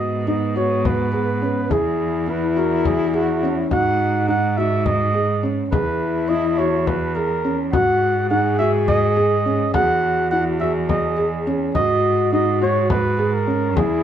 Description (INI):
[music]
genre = contemporary instrumental, chamber music in an uneven meter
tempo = 209 BPM (eighths)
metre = 7/8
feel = straight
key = G# minor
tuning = A4 = 440 Hz
[part]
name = warm flugelhorn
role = melody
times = 0.0-14.0 s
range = F#4 to F#5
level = -22 LUFS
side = right 2 dB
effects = none
[part]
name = warm French horn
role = second line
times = 0.0-14.0 s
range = B3 to G#4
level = -23 LUFS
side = left 4 dB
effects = none
[part]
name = felt-muted upright piano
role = arpeggios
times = 0.0-14.0 s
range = C#4 to G#4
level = -23 LUFS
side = equal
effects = none
[part]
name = bright cello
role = bass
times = 0.0-14.0 s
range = E2 to G#2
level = -24 LUFS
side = right 4 dB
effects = none
[part]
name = frame drum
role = percussion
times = 0.9-14.0 s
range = none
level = -23 LUFS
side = left 4 dB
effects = none
[sound]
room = moderate studio reverb, RT60 0.7 s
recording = none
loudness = -17 LUFS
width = side -9 dB against mid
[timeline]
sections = 0.0-14.0 A section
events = none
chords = 0.0 G#m7; 1.7 Eadd9; 3.7 G#5; 5.7 Eadd9; 7.7 G#5; 9.7 Eadd9; 11.8 G#5